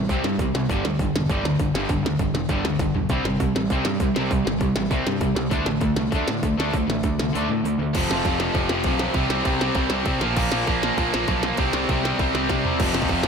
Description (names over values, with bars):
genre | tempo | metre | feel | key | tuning
punk rock | 198 BPM | 4/4 | straight | unclear | A4 = 440 Hz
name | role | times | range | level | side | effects
distorted electric guitar | riff | 0.0-13.3 s | F2 to D4 | -26 LUFS | left 9 dB | distortion
distorted electric guitar | riff | 0.0-13.3 s | F2 to D4 | -26 LUFS | right 9 dB | distortion, slapback echo
growling picked electric bass | bass | 0.0-13.3 s | E1 to C3 | -29 LUFS | equal | overdrive
minimal click drum kit | drums | 0.1-13.3 s | crash cymbal, hi-hat, kick drum, ride cymbal, snare drum, toms | -26 LUFS | equal | overdrive
tight distorted guitar | riff | 7.9-13.3 s | F2 to C4 | -26 LUFS | equal | distortion
room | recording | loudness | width
moderate lush hall reverb, RT60 1.8 s | big arena sound | -20 LUFS | side -6 dB against mid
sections
0.0-7.9 A section; 7.9-12.8 B section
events
drum fill 2.8-3.1, 12.5-12.8; kick and snare drop out 7.3-7.9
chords
0.0 C5; 0.7 G5; 3.1 C5; 5.5 D5; 7.9 F5; 9.2 C5; 10.2 Bb5; 11.6 C5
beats
0.10 0.40 | 0.70 1.00 1.30 1.60 | 1.90 2.20 2.50 2.81 | 3.11 3.41 3.71 4.01 | 4.32 4.62 4.92 5.22 | 5.53 5.83 6.13 6.43 | 6.74 7.04 7.34 7.65 | 7.95 8.25 8.55 8.86 | 9.16 9.46 9.77 10.07 | 10.37 10.68 10.98 11.28 | 11.58 11.89 12.19 12.49 | 12.79 13.10